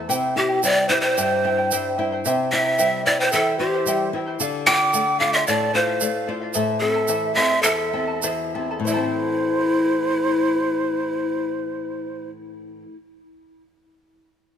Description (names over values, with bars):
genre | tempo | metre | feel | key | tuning
andean folk, Andean ensemble | 90-112 BPM | 2/4 | straight | A minor | A4 = 435 Hz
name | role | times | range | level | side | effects
charango | accompaniment | 0.0-13.0 s | E4 to A5 | -25 LUFS | right 1 dB | none
flamenco guitar | accompaniment | 0.0-13.0 s | E2 to F4 | -29 LUFS | left 6 dB | none
tube shaker | percussion | 0.1-9.2 s | none | -28 LUFS | right 7 dB | none
breathy large pan pipes | melody | 0.4-12.3 s | E4 to G5 | -21 LUFS | left 1 dB | tape echo
breathy large quena | second line | 3.3-12.3 s | C5 to D6 | -26 LUFS | right 6 dB | none
room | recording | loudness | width
light reverb | close, detailed microphones | -18 LUFS | side -8 dB against mid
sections
0.1-8.9 A section; 8.9-11.5 B section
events
slowing down 6.5-8.9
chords
0.1 C; 4.4 Dm; 6.5 Am